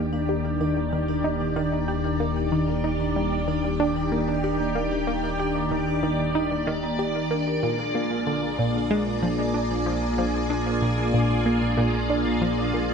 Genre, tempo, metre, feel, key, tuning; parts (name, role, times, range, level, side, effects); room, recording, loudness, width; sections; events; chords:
ambient, sequencer-driven space music; 94 BPM; 4/4; straight; A4 = 444 Hz
string machine, full ensemble; sustained chords; 0.0-12.9 s; Eb3 to D5; -26 LUFS; equal; ensemble chorus
vibraphone with medium mallets; arpeggios; 0.0-12.9 s; Bb3 to D5; -29 LUFS; moving between left 6 dB and right 2 dB; auto-pan, analog delay
analog pluck; riff; 0.0-12.9 s; Bb2 to G4; -28 LUFS; right 1 dB; chorus, phaser, analog delay
fat analog bass; bass; 0.0-12.9 s; Eb1 to Bb1; -32 LUFS; equal
moderate plate reverb, RT60 2.4 s; -22 LUFS; side -6 dB against mid
0.0-12.9 A section
0.0 Ebmaj7; 7.6 Bb7